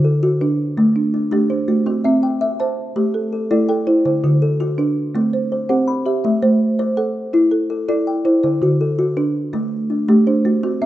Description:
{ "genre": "southern african traditional, mbira-style interlocking cycle", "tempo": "110 BPM (dotted quarters)", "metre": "12/8", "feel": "straight", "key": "unclear", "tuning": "A4 = 440 Hz", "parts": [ { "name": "folk marimba with soft mallets", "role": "arpeggios", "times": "0.0-10.9 s", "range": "D3 to F#5", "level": "-17 LUFS", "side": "right 2 dB", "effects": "none" }, { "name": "kalimba", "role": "arpeggios", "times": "0.0-10.9 s", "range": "D3 to B5", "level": "-20 LUFS", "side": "left 3 dB", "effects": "none" } ], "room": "moderate plate reverb, RT60 2.6 s", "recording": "rough home demo mix, nothing above 7.9 kHz", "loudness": "-15 LUFS", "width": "side -14 dB against mid", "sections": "0.0-10.9 A section", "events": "none", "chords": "0.0 D; 1.9 C; 3.0 Am; 4.1 D; 5.2 C; 6.2 Am; 8.4 D" }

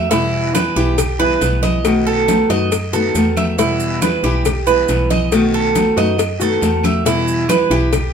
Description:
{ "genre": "latin, Cuban son and guajira", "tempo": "138 BPM", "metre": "4/4", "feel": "straight", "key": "E minor", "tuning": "A4 = 445 Hz", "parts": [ { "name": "nylon-string guitar", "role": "accompaniment", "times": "0.0-8.0 s", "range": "B2 to F#4", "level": "-18 LUFS", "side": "left 2 dB", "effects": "none" }, { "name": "Cuban tres", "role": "arpeggios", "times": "0.0-8.1 s", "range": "E4 to E5", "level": "-18 LUFS", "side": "right 6 dB", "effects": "none" }, { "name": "woody FM bass", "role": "bass", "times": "0.0-8.1 s", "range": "B1 to F#2", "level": "-21 LUFS", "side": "equal", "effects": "none" }, { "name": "congas", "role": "percussion", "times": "0.1-8.1 s", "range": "none", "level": "-23 LUFS", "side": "left 2 dB", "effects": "none" }, { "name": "cowbell", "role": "percussion", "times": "0.1-8.1 s", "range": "none", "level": "-23 LUFS", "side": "left 9 dB", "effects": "none" }, { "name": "guiro", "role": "percussion", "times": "0.1-8.1 s", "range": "none", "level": "-31 LUFS", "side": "left 2 dB", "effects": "none" }, { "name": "maracas", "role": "percussion", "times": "0.1-8.1 s", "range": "none", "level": "-29 LUFS", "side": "right 7 dB", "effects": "none" }, { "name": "claves", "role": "percussion", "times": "0.6-8.1 s", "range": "none", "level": "-30 LUFS", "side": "right 1 dB", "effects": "none" } ], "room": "moderate studio reverb, RT60 0.9 s", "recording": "minimal, uncompressed stereo recording", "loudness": "-13 LUFS", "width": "side -7 dB against mid", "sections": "0.0-8.1 A section", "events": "none", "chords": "0.1 Em; 1.9 B7; 3.6 Em; 5.3 B7; 7.1 Em" }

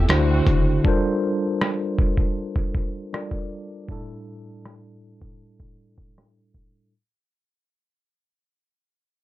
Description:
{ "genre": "contemporary R&B", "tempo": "79 BPM", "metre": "4/4", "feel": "straight", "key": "unclear", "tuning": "A4 = 440 Hz", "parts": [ { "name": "tine electric piano", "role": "accompaniment", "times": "0.0-6.9 s", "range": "A2 to D5", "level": "-25 LUFS", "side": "equal", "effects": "medium stereo tremolo" }, { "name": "warm studio string section", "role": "sustained chords", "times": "0.0-0.8 s", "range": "D3 to F#4", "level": "-31 LUFS", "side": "right 1 dB", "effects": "none" }, { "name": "rubbery square bass", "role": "bass", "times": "0.0-0.8 s", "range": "F#1 to D2", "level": "-21 LUFS", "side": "equal", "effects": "none" }, { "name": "dusty soul sampler-style drum kit", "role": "drums", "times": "0.1-6.7 s", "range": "hi-hat, kick drum, rim click", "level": "-22 LUFS", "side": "equal", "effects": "overdrive" } ], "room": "light reverb", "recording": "low-pass filter", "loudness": "-20 LUFS", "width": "side -15 dB against mid", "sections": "0.0-6.9 A section", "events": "fade-out 0.0-6.9; filter sweep 0.0-6.9", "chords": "0.1 D7; 0.8 Gm11; 3.9 A7sus4" }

